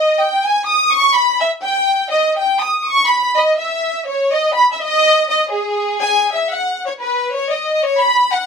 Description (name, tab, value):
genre	mexican folk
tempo	123 BPM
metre	2/4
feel	swing 55% on 8ths, rubato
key	unclear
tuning	A4 = 439 Hz
part	rich studio violin section	solo	0.0-8.5 s	G#4 to D#6	-13 LUFS	equal	none
room	moderate studio reverb, RT60 0.6 s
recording	none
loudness	-13 LUFS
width	side -6 dB against mid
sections	0.0-6.5 A section; 6.5-8.5 B section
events	none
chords	none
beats	0.17 | 0.64 1.12 | 1.60 2.09 | 2.58 3.07 | 3.55 4.04 | 4.51 4.99 | 5.48 5.98 | 6.48 6.98 | 7.47 7.96 | 8.44